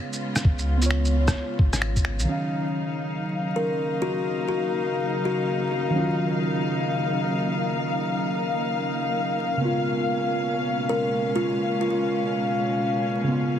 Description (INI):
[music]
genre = future garage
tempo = 131 BPM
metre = 4/4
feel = swing 63% on 16ths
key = Eb minor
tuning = A4 = 440 Hz
[part]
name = muted felt-like synth keys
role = accompaniment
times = 0.0-13.6 s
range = Db3 to F5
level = -29 LUFS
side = right 1 dB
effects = chorus, sidechain pumping, tape echo
[part]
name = dark studio string section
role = sustained chords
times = 0.0-13.6 s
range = Cb3 to F5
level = -27 LUFS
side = left 2 dB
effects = sidechain pumping
[part]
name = electronic shaker, rim click and finger snaps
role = drums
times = 0.1-2.3 s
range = none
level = -28 LUFS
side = equal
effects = small room ambience, soft clipping on snare
[part]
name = warm sub bass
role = bass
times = 0.4-2.3 s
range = Ab1 to Db2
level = -24 LUFS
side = equal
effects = sidechain pumping
[part]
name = electronic kick drum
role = drums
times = 0.4-2.0 s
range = none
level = -21 LUFS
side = equal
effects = small room ambience
[part]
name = wind-like tuned noise texture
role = texture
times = 3.1-13.6 s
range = Bb3 to Bb4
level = -33 LUFS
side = right 1 dB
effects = built-in reverb
[part]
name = kalimba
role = melody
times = 3.6-5.6, 10.9-12.0 s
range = F4 to Bb4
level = -27 LUFS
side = left 2 dB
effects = digital delay
[sound]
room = moderate huge ambient reverb, RT60 4.2 s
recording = dense, heavily limited modern master, vinyl crackle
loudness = -22 LUFS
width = side -9 dB against mid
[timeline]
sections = 0.0-2.3 A section; 2.3-13.6 B section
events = none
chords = 0.0 Db7; 2.3 Ebm9; 9.6 Db7